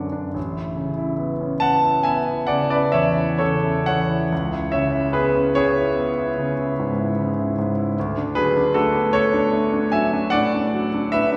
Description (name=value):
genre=classical, impressionist solo piano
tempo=41-52 BPM (dotted quarters)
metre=9/8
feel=rubato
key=unclear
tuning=A4 = 440 Hz
part: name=clear concert grand piano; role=solo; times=0.0-11.4 s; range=A1 to A5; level=-21 LUFS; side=equal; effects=none
room=wet recital hall reverb, RT60 1.7 s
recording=recorded in a church or concert hall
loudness=-21 LUFS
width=mono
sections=0.0-11.4 A section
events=none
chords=0.4 A69; 4.3 C#m7; 8.0 Dmaj7#11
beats=| 0.36 1.62 2.92 | 4.31 5.55 6.78 | 7.96 9.14 10.34